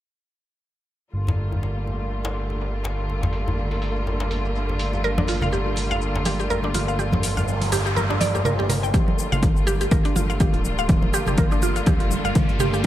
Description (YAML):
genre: afro house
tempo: 123 BPM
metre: 4/4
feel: swing 56% on 16ths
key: G minor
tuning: A4 = 440 Hz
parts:
  - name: rich studio string section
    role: sustained chords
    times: 1.1-12.9 s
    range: D3 to F4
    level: -28 LUFS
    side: equal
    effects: sidechain pumping
  - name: smooth synth bass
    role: bass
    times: 1.1-12.9 s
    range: D1 to D2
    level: -26 LUFS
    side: equal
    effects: sidechain pumping
  - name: afro-pop drum kit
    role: drums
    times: 1.1-12.9 s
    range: cabasa, hi-hat, toms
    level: -28 LUFS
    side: left 2 dB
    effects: low-pass filter on perc, small room ambience, low-pass filter on hats, low-pass filter on toms
  - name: djembe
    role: percussion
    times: 1.3-8.7 s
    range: none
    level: -30 LUFS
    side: left 1 dB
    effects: analog delay
  - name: mallet-like synth pluck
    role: arpeggios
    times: 5.0-12.8 s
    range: D4 to G5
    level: -26 LUFS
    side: right 1 dB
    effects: chorus, phaser, sidechain pumping, analog delay
  - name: congas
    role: percussion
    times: 5.0-12.9 s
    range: none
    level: -28 LUFS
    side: right 2 dB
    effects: analog delay
  - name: noise sweep and riser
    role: sound effects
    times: 7.3-12.9 s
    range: none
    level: -32 LUFS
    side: equal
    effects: none
  - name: electronic kick drum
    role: drums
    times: 8.9-12.9 s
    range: none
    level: -21 LUFS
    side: equal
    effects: overdrive, small room ambience
room: moderate spring reverb, RT60 1.6 s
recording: echo-heavy mix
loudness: -20 LUFS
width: side -12 dB against mid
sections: 1.1-8.9 A section; 8.9-12.9 B section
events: filter sweep on drum 1.1-8.9; noise sweep 7.3-8.9; build-up 8.9-12.9; drum fill 8.9-12.9; riser 8.9-12.9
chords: 1.1 Gm9